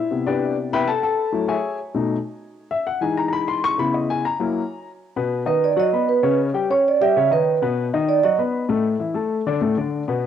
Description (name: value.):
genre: jazz.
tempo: 196 BPM.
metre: 4/4.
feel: straight.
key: unclear.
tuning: A4 = 439 Hz.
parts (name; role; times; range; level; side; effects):
dark upright piano; accompaniment; 0.0-10.3 s; A2 to C#6; -20 LUFS; left 4 dB; cassette tape.
vibraphone with soft mallets; melody; 5.5-8.4 s; B4 to E5; -18 LUFS; right 8 dB; cassette tape.
room: moderate spring reverb, RT60 1.9 s, small room ambience.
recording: home recording on cassette.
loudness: -18 LUFS.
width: side -9 dB against mid.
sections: 0.0-5.0 A section; 5.0-10.3 A section.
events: upright piano solo 0.0-5.0; vibraphone solo 5.0-10.3.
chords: 0.1 Cmaj9; 1.3 F#m9; 1.9 B7; 2.6 Emaj7; 3.8 C#m7; 4.4 F#7; 5.0 B; 6.2 C#m9b5; 7.5 B; 8.7 A5; 9.3 D5.